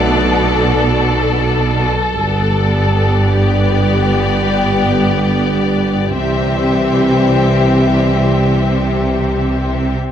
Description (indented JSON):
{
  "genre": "cinematic",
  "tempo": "free time",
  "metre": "none",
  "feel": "none",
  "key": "unclear",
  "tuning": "A4 = 440 Hz",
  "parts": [
    { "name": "warm symphonic violin section", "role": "melody", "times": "0.0-10.0 s", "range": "D5 to E5", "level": "-23 LUFS", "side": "left 5 dB", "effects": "none" },
    { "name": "dark symphonic violin section", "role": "second line", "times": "0.0-10.0 s", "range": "G4 to A4", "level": "-20 LUFS", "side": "left 4 dB", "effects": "none" },
    { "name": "clear symphonic viola section", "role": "accompaniment", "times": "0.0-9.9 s", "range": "B3 to C4", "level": "-23 LUFS", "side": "equal", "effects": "none" },
    { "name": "clear trombone section", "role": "sustained chords", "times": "0.0-9.9 s", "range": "D3 to A3", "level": "-23 LUFS", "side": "right 3 dB", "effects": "none" },
    { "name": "mellow French horn section", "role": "sustained chords", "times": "0.0-9.9 s", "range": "B3 to G4", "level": "-22 LUFS", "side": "left 4 dB", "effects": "none" },
    { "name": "mellow tuba", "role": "bass", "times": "0.0-10.0 s", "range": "G1 to C2", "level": "-19 LUFS", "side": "right 3 dB", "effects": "none" },
    { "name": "rich symphonic double bass section", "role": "bass", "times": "0.0-10.0 s", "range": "G1 to C2", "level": "-21 LUFS", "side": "right 1 dB", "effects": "none" },
    { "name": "warm symphonic cello section", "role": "bass", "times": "0.0-9.9 s", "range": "G2 to C3", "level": "-19 LUFS", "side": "right 1 dB", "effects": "none" }
  ],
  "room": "moderate concert hall reverb, RT60 2.3 s",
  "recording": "none",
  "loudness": "-12 LUFS",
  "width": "side -9 dB against mid",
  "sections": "0.0-10.1 A section",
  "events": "none",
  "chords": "0.0 Bm7; 2.1 G; 6.2 C"
}